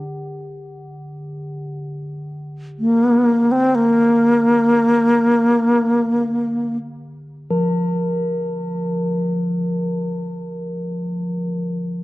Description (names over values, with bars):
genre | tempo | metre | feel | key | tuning
world meditative, free-time meditation music | free time | none | none | unclear | A4 = 440 Hz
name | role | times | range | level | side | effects
bronze singing bowl | texture | 0.0-10.9 s | D3 to F3 | -24 LUFS | equal | none
bright wooden-headed alto flute | melody | 2.8-6.8 s | Bb3 to C4 | -14 LUFS | equal | none
room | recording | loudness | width
wet spring reverb, RT60 1.3 s, studio reverb | worn, warbling old tape, cassette tape, warbly pitch drift, faint mains hum | -16 LUFS | side -19 dB against mid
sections
0.0-7.5 A section; 7.5-11.6 B section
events
none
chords
none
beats
free time